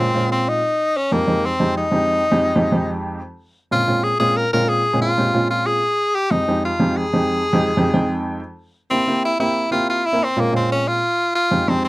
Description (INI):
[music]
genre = jazz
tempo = 185 BPM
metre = 4/4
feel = straight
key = F minor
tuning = A4 = 440 Hz
[part]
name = edgy tenor saxophone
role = melody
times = 0.0-11.9 s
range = Bb3 to Bb4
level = -19 LUFS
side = left 1 dB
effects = none
[part]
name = dark baby grand piano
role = accompaniment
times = 0.0-11.9 s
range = F2 to G5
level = -20 LUFS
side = right 1 dB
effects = none
[sound]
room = moderate booth ambience, RT60 0.2 s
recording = dry, close 1970s-style studio recording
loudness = -16 LUFS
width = side -19 dB against mid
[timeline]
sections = 0.0-11.9 A section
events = none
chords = 0.0 Bbm9; 1.1 Fm7; 3.7 Bbm9; 6.3 Fm7; 8.9 C7; 10.2 Bbm9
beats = 0.14 0.46 0.79 | 1.11 1.43 1.76 2.08 | 2.41 2.73 3.06 3.38 | 3.71 4.03 4.36 4.68 | 5.01 5.33 5.66 5.98 | 6.31 6.63 6.96 7.29 | 7.61 7.94 8.26 8.59 | 8.91 9.24 9.56 9.89 | 10.21 10.54 10.86 11.19 | 11.51 11.84